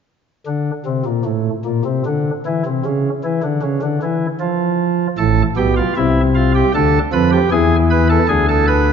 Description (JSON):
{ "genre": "classical, baroque-style 3-part fugue for pipe organ", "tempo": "77 BPM", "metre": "3/4", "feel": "straight", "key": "unclear", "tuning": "A4 = 440 Hz", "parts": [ { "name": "pipe organ, cornet", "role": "solo", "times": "0.5-8.9 s", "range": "A1 to B4", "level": "-14 LUFS", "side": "equal", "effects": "none" } ], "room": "wet concert hall reverb, RT60 2.2 s", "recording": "dark, warm production, nothing above 7.5 kHz", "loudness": "-14 LUFS", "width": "side -7 dB against mid", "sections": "0.5-8.9 A section", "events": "none", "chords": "0.5 N.C.; 5.2 Am; 6.7 Bm7b5/D; 7.5 E7" }